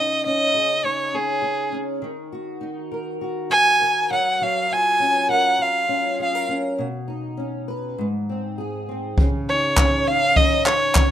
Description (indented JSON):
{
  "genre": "acoustic pop",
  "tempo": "101 BPM",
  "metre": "4/4",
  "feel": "swing 55% on 16ths",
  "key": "Db major",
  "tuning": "A4 = 440 Hz",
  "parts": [
    { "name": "rich violin", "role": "melody", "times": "0.0-11.1 s", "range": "Ab4 to Ab5", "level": "-18 LUFS", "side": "equal", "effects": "none" },
    { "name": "fingerpicked steel-string acoustic guitar", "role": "accompaniment", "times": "0.0-11.1 s", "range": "Ab2 to Cb5", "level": "-26 LUFS", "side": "equal", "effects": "double-tracked left and right" },
    { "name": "jazz brush drum kit", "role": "drums", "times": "9.2-11.1 s", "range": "handclaps, kick drum", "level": "-18 LUFS", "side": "equal", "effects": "none" }
  ],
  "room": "small room reverb",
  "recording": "rough home demo mix",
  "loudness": "-18 LUFS",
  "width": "side -11 dB against mid",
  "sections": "0.0-9.2 A section; 9.2-11.1 B section",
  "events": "none",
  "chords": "0.0 Dbsus2; 2.0 Ebm; 4.1 Gbmaj7; 6.8 Cbadd9; 8.0 Ab; 9.2 Dbsus2",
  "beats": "0.25 0.84 1.44 | 2.04 2.63 3.23 3.82 | 4.42 5.01 5.61 6.20 | 6.80 7.39 7.99 8.59 | 9.18 9.78 10.37 10.97"
}